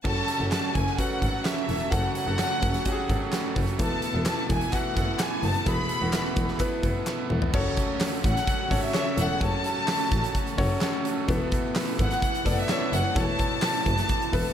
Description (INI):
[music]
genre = piano-driven pop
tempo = 128 BPM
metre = 4/4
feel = straight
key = F# minor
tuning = A4 = 444 Hz
[part]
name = clear concert grand piano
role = accompaniment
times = 0.0-14.5 s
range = B2 to D5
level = -31 LUFS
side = left 2 dB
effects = none
[part]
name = raw garage guitar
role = riff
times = 0.0-14.5 s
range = F#2 to A4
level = -34 LUFS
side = right 8 dB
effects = overdrive
[part]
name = huge arena drum kit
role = drums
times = 0.0-14.4 s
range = crash cymbal, handclaps, hi-hat, kick drum, snare drum, toms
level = -28 LUFS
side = equal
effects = none
[part]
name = warm studio violin section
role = melody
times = 0.1-14.5 s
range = E5 to B5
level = -29 LUFS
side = left 1 dB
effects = none
[part]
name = warm analog pad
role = sustained chords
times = 0.1-14.5 s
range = B2 to F#4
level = -38 LUFS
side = left 3 dB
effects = none
[part]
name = warm double bass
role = bass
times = 0.1-14.4 s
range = E1 to A1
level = -29 LUFS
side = equal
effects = none
[part]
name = group handclap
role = percussion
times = 4.3-7.2 s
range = none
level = -38 LUFS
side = left 4 dB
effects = none
[sound]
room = studio ambience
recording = none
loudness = -23 LUFS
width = side -9 dB against mid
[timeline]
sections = 0.0-7.5 A section; 7.5-14.5 B section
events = drum fill 7.1-7.5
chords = 0.0 F#m; 3.8 Esus4; 7.5 F#m; 11.3 Esus4